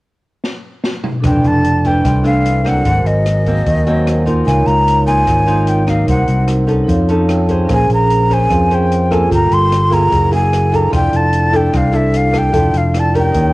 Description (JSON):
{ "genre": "bossa nova", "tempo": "149 BPM", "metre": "4/4", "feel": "straight", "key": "unclear", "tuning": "A4 = 440 Hz", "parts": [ { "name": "open jazz drum kit", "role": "drums", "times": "0.4-13.4 s", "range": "hi-hat, kick drum, rim click, snare drum, toms", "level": "-22 LUFS", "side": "equal", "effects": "cassette tape" }, { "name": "nylon-string guitar", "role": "accompaniment", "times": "1.2-13.5 s", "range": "F2 to C5", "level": "-20 LUFS", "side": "equal", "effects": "none" }, { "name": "vibraphone with medium mallets", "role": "accompaniment", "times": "1.2-13.5 s", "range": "Db4 to Bb5", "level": "-19 LUFS", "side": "right 2 dB", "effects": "none" }, { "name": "fingered electric bass", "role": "bass", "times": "1.2-13.5 s", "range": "F1 to F2", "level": "-15 LUFS", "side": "equal", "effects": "none" }, { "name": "breathy jazz flute", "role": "melody", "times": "1.3-13.5 s", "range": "Eb5 to C6", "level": "-16 LUFS", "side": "equal", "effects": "cassette tape" } ], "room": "studio ambience", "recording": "home recording on cassette", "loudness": "-11 LUFS", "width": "side -20 dB against mid", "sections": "0.0-1.2 A section; 1.2-13.5 B section", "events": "drum fill 0.4-1.2; vibraphone fill 3.7-4.5, 6.9-7.7", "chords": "0.0 N.C.; 1.2 Fmaj13; 2.9 Ab9; 4.5 Db69; 6.1 Cm7b5; 6.9 F7b13; 7.7 Bbm9; 9.3 Gm9; 10.1 Gb9; 10.9 Fmaj13" }